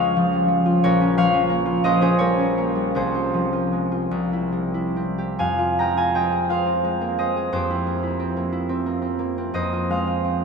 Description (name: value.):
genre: classical, solo harp piece.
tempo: 44-61 BPM (dotted quarters).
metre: 6/8.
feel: rubato.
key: F minor.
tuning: A4 = 442 Hz.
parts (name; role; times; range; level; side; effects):
concert harp; solo; 0.0-10.4 s; Bb1 to Bb5; -19 LUFS; equal; none.
room: wet cathedral reverb, RT60 7.2 s.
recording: in a vast, echoing space.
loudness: -19 LUFS.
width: side -5 dB against mid.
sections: 0.0-10.4 A section.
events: none.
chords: 0.0 Db; 0.8 Bbm; 1.8 Gdim/Bb; 3.0 Fm/C; 4.1 C; 5.4 Fm; 7.5 C7/F; 9.5 Fm.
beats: | 0.83 1.84 | 2.95 4.11 | 5.40 6.52 | 7.54 8.54 | 9.54.